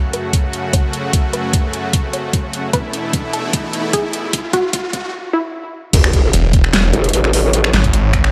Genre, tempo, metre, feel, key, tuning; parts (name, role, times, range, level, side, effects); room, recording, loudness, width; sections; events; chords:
heavy wobble dubstep; 150 BPM; 4/4; swing 54% on 16ths, half-time; F# minor; A4 = 440 Hz
unison pluck; melody; 0.0-5.9 s; E4 to C#5; -25 LUFS; equal; tape echo
supersaw chords; sustained chords; 0.0-8.3 s; E2 to C#5; -26 LUFS; equal; sidechain pumping, low-pass filter
riser and sub drop; sound effects; 2.2-7.5 s; -28 LUFS; equal
dubstep drum kit; drums; 0.1-8.3 s; crash cymbal, finger snaps, hi-hat, snare drum; -21 LUFS; equal
electronic kick drum; drums; 0.3-8.2 s; -19 LUFS; equal
growl bass; bass; 5.9-7.7 s; F#1 to A1; -17 LUFS; equal; chorus, overdrive
snarling distorted saw bass; bass; 6.3-8.3 s; E1 to G#1; -16 LUFS; equal; distortion, overdrive
light reverb; high-pass filter; -16 LUFS; mono
0.0-5.9 A section; 5.9-8.3 B section
build-up 0.0-5.9; riser 2.2-5.1; filter sweep on synth pluck 0.0-5.9; drum fill 2.7-5.1; break 5.1-5.9; drop 5.9-8.3; impact 5.9-7.5
0.0 F#m; 2.7 Esus4; 5.9 F#m